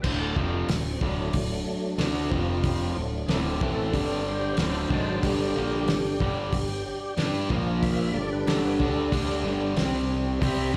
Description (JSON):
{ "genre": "classic rock", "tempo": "92 BPM", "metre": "4/4", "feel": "straight", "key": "unclear", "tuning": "A4 = 440 Hz", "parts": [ { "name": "picked old ladder-braced acoustic guitar", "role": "accompaniment", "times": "0.0-10.8 s", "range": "C3 to F5", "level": "-41 LUFS", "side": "equal", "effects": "none" }, { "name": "tonewheel organ", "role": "sustained chords", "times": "0.0-10.8 s", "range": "C3 to A5", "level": "-32 LUFS", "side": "equal", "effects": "overdrive, chorus vibrato, slow rotary speaker" }, { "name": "crunchy overdriven guitar", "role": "riff", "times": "0.0-10.8 s", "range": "D2 to G4", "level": "-34 LUFS", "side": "equal", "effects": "none" }, { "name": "overdriven semi-hollow guitar", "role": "riff", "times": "0.0-10.8 s", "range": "D2 to G4", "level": "-36 LUFS", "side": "equal", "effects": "none" }, { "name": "growling fingered electric bass", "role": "bass", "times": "0.0-10.8 s", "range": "D1 to G2", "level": "-35 LUFS", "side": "equal", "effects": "overdrive" }, { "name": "cloth-damped thuddy drum kit", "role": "drums", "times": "0.0-10.8 s", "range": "crash cymbal, hi-hat, kick drum, snare drum", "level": "-32 LUFS", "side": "equal", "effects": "none" } ], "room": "moderate lush hall reverb, RT60 2.7 s", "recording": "live gig heard through the venue's PA, club reverb", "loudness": "-26 LUFS", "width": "mono", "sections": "0.0-10.8 A section", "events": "tonewheel organ solo 0.0-10.8", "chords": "0.0 D; 2.3 F5; 3.0 D; 3.9 G5; 4.6 D; 5.2 G5; 7.5 Bb5; 8.2 G5; 9.8 C5" }